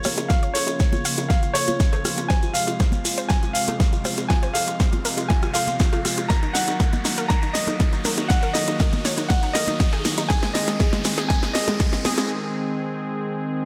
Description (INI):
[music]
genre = progressive house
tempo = 120 BPM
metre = 4/4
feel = straight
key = unclear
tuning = A4 = 438 Hz
[part]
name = bright grand piano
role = melody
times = 0.0-12.3 s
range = Db5 to Bb5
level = -30 LUFS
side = equal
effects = low-pass filter, dub echo
[part]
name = warm analog pad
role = sustained chords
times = 0.0-13.7 s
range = C3 to Ab4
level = -32 LUFS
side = equal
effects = chorus, sidechain pumping
[part]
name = shekere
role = percussion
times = 0.0-12.3 s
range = none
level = -34 LUFS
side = equal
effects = none
[part]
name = riser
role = sound effects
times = 2.5-12.3 s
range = none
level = -37 LUFS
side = equal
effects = none
[part]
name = analog pluck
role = arpeggios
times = 0.1-12.3 s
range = Ab3 to F5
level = -33 LUFS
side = equal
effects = chorus, sidechain pumping, dub echo
[part]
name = pop drum kit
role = drums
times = 0.1-12.3 s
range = hi-hat, rim click, snare drum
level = -29 LUFS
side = equal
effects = overdrive, high-pass filter on snare, high-pass filter on hats, high-pass filter on room
[part]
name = congas, bongos and cowbell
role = percussion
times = 0.1-12.3 s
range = none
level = -34 LUFS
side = equal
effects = sidechain pumping on perc
[part]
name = electronic kick drum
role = drums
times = 0.3-11.9 s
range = none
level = -23 LUFS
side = equal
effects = overdrive
[sound]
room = light reverb, digital ambience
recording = none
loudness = -22 LUFS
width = mono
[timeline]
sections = 0.0-13.7 A section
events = build-up 0.0-13.7; drum fill 0.0-12.3; riser 2.5-12.3; break 12.3-13.7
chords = 0.0 Bbm; 2.3 Fm; 6.3 Ebm; 10.3 Ab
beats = | 0.30 0.80 1.30 1.80 | 2.30 2.80 3.30 3.80 | 4.30 4.80 5.30 5.80 | 6.30 6.80 7.30 7.80 | 8.30 8.80 9.30 9.80 | 10.30 10.80 11.30 11.80 | 12.30 12.80 13.30